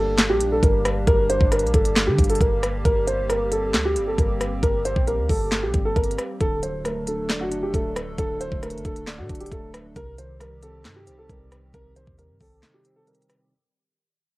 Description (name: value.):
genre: hip hop, trap.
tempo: 135 BPM.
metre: 4/4.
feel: half-time.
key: G harmonic minor.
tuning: A4 = 442 Hz.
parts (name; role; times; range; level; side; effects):
dark grand piano; melody; 0.0-13.2 s; F#4 to C5; -24 LUFS; equal; cassette tape.
hollow soft pad; sustained chords; 0.0-13.5 s; Eb3 to A4; -32 LUFS; equal; chorus.
clean 808-style bass; bass; 0.0-12.6 s; D1 to D3; -27 LUFS; equal; none.
trap drum kit; drums; 0.2-13.4 s; handclaps, hi-hat, kick drum, rim click, snare drum; -23 LUFS; equal; overdrive, cassette tape.
mellow tine electric piano; accompaniment; 6.4-13.5 s; C3 to D5; -36 LUFS; right 1 dB; overdrive.
room: digital ambience.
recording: home recording on cassette, lossy compression artefacts.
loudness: -20 LUFS.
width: side -20 dB against mid.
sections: 0.0-13.5 A section.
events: fade-out 0.0-13.5; break 12.6-13.5.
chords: 0.0 Gm; 6.4 D; 10.0 Cm.